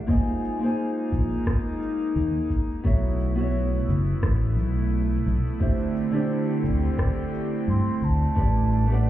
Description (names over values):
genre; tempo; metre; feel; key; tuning
sunset chillout; 87 BPM; 4/4; swing 56% on 16ths; unclear; A4 = 440 Hz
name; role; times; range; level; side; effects
mellow hollow baroque flute; melody; 0.0-1.1, 7.7-9.1 s; F#5 to C6; -34 LUFS; equal; ping-pong delay
nylon-string guitar; accompaniment; 0.0-9.1 s; D3 to G#5; -30 LUFS; right 1 dB; auto-pan, tape echo
clear studio string section; sustained chords; 0.0-9.1 s; D3 to G4; -28 LUFS; right 1 dB; none
electronic kick drum; drums; 0.1-8.5 s; none; -25 LUFS; equal; none
electronic shaker and rim click; drums; 0.1-9.1 s; none; -35 LUFS; right 1 dB; overdrive
fretless electric bass; bass; 1.1-9.1 s; F#1 to G2; -23 LUFS; equal; none
room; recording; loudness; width
light reverb; heard muffled through a wall, club reverb, EQ; -22 LUFS; side -13 dB against mid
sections
0.0-9.1 A section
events
none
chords
0.1 A#9sus4; 2.9 B9sus4; 5.6 D9sus4; 8.4 A9sus4